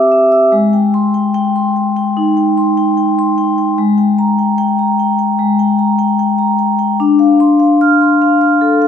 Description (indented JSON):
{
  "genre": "classical, contemporary piece for solo vibraphone",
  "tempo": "74 BPM",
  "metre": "4/4",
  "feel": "rubato",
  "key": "G minor",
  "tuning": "A4 = 440 Hz",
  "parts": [
    { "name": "vibraphone with medium mallets", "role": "solo", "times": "0.0-8.9 s", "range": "Ab3 to F6", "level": "-10 LUFS", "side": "left 1 dB", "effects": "none" }
  ],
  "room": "wet scoring stage reverb, RT60 1.8 s",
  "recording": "none",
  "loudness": "-10 LUFS",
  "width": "side -8 dB against mid",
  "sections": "0.0-8.9 A section",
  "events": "none",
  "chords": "0.0 Cadd9; 0.5 Abmaj7; 3.8 Gm/Ab; 7.0 Dm7"
}